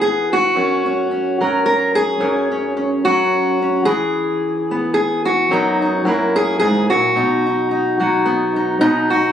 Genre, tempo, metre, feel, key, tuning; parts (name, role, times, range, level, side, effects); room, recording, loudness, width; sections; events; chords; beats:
folk, solo fingerstyle acoustic guitar; 109 BPM; 3/4; swing 55% on 8ths; B major; A4 = 441 Hz
fingerpicked steel-string acoustic guitar; solo; 0.0-9.3 s; F#2 to A#4; -15 LUFS; equal
light reverb; recorded on a phone in the room, studio reverb; -15 LUFS; side -9 dB against mid
0.0-8.8 A section
0.0 E5; 0.6 F#; 2.2 F#sus2; 3.9 E; 5.5 B/F#; 6.1 F#7; 7.2 B
0.01 | 0.56 1.11 1.66 | 2.21 2.75 3.30 | 3.85 4.40 4.95 | 5.50 6.05 6.60 | 7.15 7.70 8.25 | 8.80